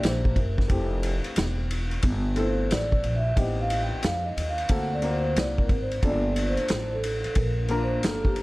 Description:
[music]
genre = hip hop, jazz-hop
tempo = 90 BPM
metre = 4/4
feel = swing 66% on 16ths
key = unclear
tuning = A4 = 441 Hz
[part]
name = vibraphone with soft mallets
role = melody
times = 0.0-8.4 s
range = G4 to G5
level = -30 LUFS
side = right 1 dB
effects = analog delay
[part]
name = dark baby grand piano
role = accompaniment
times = 0.0-8.4 s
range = A3 to C5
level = -32 LUFS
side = left 2 dB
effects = none
[part]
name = upright bass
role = bass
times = 0.0-8.4 s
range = E1 to F2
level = -28 LUFS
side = equal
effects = none
[part]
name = vintage drum kit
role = drums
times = 0.0-8.4 s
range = hi-hat, kick drum, ride cymbal, snare drum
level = -27 LUFS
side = equal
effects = none
[sound]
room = small room ambience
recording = none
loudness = -23 LUFS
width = side -20 dB against mid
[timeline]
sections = 0.0-8.4 A section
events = vibraphone solo 0.0-8.4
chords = 0.0 C7; 0.7 Fmaj7; 3.4 Am7b5; 4.7 D7b13; 6.0 Gm7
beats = 0.03 | 0.69 1.36 2.03 2.69 | 3.36 4.03 4.69 5.36 | 6.03 6.69 7.36 8.03

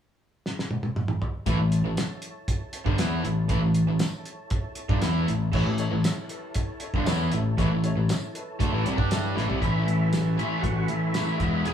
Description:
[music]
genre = classic rock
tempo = 118 BPM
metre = 4/4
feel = straight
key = A mixolydian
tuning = A4 = 440 Hz
[part]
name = cloth-damped thuddy drum kit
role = drums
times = 0.5-11.7 s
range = crash cymbal, hi-hat, kick drum, snare drum, tambourine, toms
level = -28 LUFS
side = right 1 dB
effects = none
[part]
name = mellow tonewheel organ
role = sustained chords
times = 1.5-9.6 s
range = E4 to A5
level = -42 LUFS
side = right 1 dB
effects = slow rotary speaker, chorus vibrato
[part]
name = overdriven electric guitar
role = riff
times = 1.5-11.7 s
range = G2 to G4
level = -31 LUFS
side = right 6 dB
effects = none
[part]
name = sludgy distorted guitar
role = riff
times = 1.5-11.7 s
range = G2 to G4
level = -28 LUFS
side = left 4 dB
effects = overdrive
[part]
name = overdriven picked electric bass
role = bass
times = 1.5-11.7 s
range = E1 to G2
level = -27 LUFS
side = equal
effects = none
[part]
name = warm upright piano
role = accompaniment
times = 5.5-9.6 s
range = E4 to E5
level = -36 LUFS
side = left 6 dB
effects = none
[part]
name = overdriven tonewheel organ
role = melody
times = 9.6-11.7 s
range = E4 to G#4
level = -32 LUFS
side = equal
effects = slow rotary speaker, chorus vibrato
[sound]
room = wet studio reverb, RT60 0.8 s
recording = band playing live in one room, small room ambience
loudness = -23 LUFS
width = side -9 dB against mid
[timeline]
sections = 0.0-1.5 A section; 1.5-9.6 B section; 9.6-11.7 C section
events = drum fill 0.4-1.5, 9.4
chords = 0.0 N.C.; 1.5 A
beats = 0.45 0.95 | 1.46 1.97 2.48 2.99 | 3.50 4.00 4.51 5.02 | 5.53 6.04 6.55 7.06 | 7.57 8.08 8.59 9.10 | 9.61 10.12 10.63 11.15 | 11.66

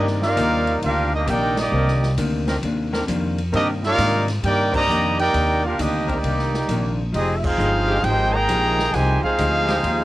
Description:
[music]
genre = jazz, big band swing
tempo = 133 BPM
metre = 4/4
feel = swing 67% on 8ths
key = C minor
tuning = A4 = 440 Hz
[part]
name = mellow trumpet section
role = melody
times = 0.0-10.0 s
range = Bb3 to Bb5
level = -20 LUFS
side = right 1 dB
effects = cassette tape
[part]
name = bright trombone section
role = second line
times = 0.0-10.0 s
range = C3 to G4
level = -28 LUFS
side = right 3 dB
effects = none
[part]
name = vintage hollow-body jazz guitar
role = accompaniment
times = 0.0-10.0 s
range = C3 to G4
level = -27 LUFS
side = left 2 dB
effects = none
[part]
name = bright trombone section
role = sustained chords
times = 0.0-9.8 s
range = Eb3 to D5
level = -29 LUFS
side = equal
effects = none
[part]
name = upright bass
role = bass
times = 0.0-10.0 s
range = F1 to Ab2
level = -23 LUFS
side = equal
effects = none
[part]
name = swinging big-band drum kit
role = drums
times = 0.1-10.0 s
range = crash cymbal, hi-hat, kick drum, ride cymbal, snare drum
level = -31 LUFS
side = equal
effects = cassette tape
[sound]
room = light reverb, studio ambience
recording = home recording on cassette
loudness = -18 LUFS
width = side -16 dB against mid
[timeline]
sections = 0.0-10.0 A section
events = band accent 1.5, 4.7, 7.4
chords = 0.0 Cm9; 7.1 Fm9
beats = 0.37 0.82 1.27 | 1.72 2.17 2.62 3.08 | 3.53 3.98 4.43 4.88 | 5.33 5.78 6.23 6.68 | 7.13 7.58 8.03 8.48 | 8.94 9.38 9.84

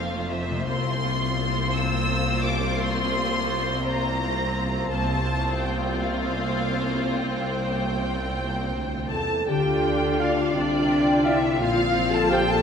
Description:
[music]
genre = cinematic, emotional film score for orchestra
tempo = 51-58 BPM (dotted quarters)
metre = 6/8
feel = rubato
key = unclear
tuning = A4 = 440 Hz
[part]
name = rich symphonic violin section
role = melody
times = 0.0-12.6 s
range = D5 to E6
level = -30 LUFS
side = left 1 dB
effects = none
[part]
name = rich symphonic violin section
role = second line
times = 0.0-12.6 s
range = F4 to A5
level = -29 LUFS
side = left 2 dB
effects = none
[part]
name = rich symphonic viola section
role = accompaniment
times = 0.0-12.6 s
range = A3 to F4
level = -30 LUFS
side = right 1 dB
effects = none
[part]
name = concert harp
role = arpeggios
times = 0.0-4.5, 9.5-12.6 s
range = Bb2 to E5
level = -30 LUFS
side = left 8 dB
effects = none
[part]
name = rich symphonic cello section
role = bass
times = 0.0-12.6 s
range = C2 to D3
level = -31 LUFS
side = right 2 dB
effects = none
[part]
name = rich symphonic double bass section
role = bass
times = 0.0-12.6 s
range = F1 to D2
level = -31 LUFS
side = right 2 dB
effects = none
[part]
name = mellow French horn section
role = sustained chords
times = 9.1-12.6 s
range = D4 to A4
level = -24 LUFS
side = left 1 dB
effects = none
[part]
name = mellow clarinet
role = second line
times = 10.2-12.4 s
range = C5 to D5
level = -31 LUFS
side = equal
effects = none
[part]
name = mellow cor anglais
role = second line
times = 10.2-12.4 s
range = F5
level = -33 LUFS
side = right 3 dB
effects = none
[part]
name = large flute ensemble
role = second line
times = 10.5-12.6 s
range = F5 to G5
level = -29 LUFS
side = left 3 dB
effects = none
[sound]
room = wet scoring stage reverb, RT60 1.9 s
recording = minimal, uncompressed stereo recording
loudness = -22 LUFS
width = side -7 dB against mid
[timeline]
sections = 0.0-9.5 A section; 9.5-12.6 B section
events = none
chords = 0.0 F; 0.7 C7sus4; 9.5 Dmadd9; 11.6 Bbsus2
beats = | 0.69 1.75 | 2.80 3.85 | 4.90 5.99 | 7.17 8.34 | 9.49 10.57 | 11.62

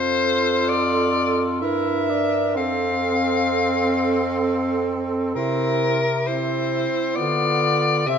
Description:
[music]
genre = classical, lyrical piece for single-reed quartet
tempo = 65 BPM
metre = 3/4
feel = rubato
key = F major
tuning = A4 = 444 Hz
[part]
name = clear soprano saxophone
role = melody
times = 0.0-8.2 s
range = Bb4 to F5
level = -22 LUFS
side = left 5 dB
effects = none
[part]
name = warm alto saxophone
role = second line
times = 0.0-8.2 s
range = E4 to Bb4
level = -27 LUFS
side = right 8 dB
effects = none
[part]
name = mellow tenor saxophone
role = accompaniment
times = 0.0-8.2 s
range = B3 to F4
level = -26 LUFS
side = left 1 dB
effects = none
[part]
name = mellow bass clarinet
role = bass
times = 0.0-8.2 s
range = F2 to D3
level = -24 LUFS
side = right 2 dB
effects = none
[sound]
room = moderate recital hall reverb, RT60 1.5 s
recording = none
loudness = -19 LUFS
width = side -7 dB against mid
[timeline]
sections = 0.0-8.2 A section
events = none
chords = 0.0 F; 1.6 Edim/G; 2.6 F; 5.4 C; 7.2 Bdim/D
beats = 0.67 1.62 | 2.56 3.50 4.44 | 5.35 6.26 7.17 | 8.07

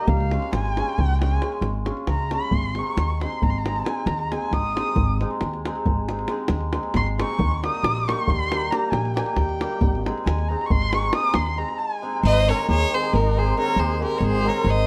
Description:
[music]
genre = balkan folk, Balkan wedding band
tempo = 272 BPM (eighths)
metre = 11/8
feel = straight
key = Ab major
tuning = A4 = 436 Hz
[part]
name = warm erhu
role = second line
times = 0.0-14.9 s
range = Eb4 to Eb6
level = -30 LUFS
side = equal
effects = none
[part]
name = cimbalom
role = accompaniment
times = 0.0-14.9 s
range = Eb3 to Ab4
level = -30 LUFS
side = equal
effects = none
[part]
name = upright bass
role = bass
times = 0.1-14.9 s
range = Ab1 to Eb2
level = -26 LUFS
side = equal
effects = none
[part]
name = davul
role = percussion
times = 0.1-11.7 s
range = none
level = -29 LUFS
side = equal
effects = none
[part]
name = clear fiddle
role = melody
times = 12.2-14.9 s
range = Bb4 to Eb5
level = -26 LUFS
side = equal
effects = none
[sound]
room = light reverb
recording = dark, warm production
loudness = -23 LUFS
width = mono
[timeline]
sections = 0.0-12.2 A section; 12.2-14.9 B section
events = erhu solo 0.0-12.2; break 11.8-12.2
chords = 0.1 Db; 2.5 Ab; 7.4 Eb; 9.8 Ab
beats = | 0.09 0.31 0.54 0.76 0.98 1.20 1.43 1.65 1.87 2.09 2.31 | 2.53 2.76 2.98 3.20 3.42 3.64 3.86 4.08 4.31 4.53 4.75 | 4.97 5.19 5.41 5.63 5.85 6.08 6.30 6.52 6.74 6.96 7.18 | 7.40 7.62 7.84 8.06 8.28 8.50 8.72 8.94 9.16 9.38 9.60 | 9.82 10.04 10.26 10.48 10.70 10.92 11.14 11.36 11.58 11.80 12.02 | 12.24 12.46 12.68 12.90 13.12 13.34 13.56 13.78 14.00 14.22 14.44 | 14.66

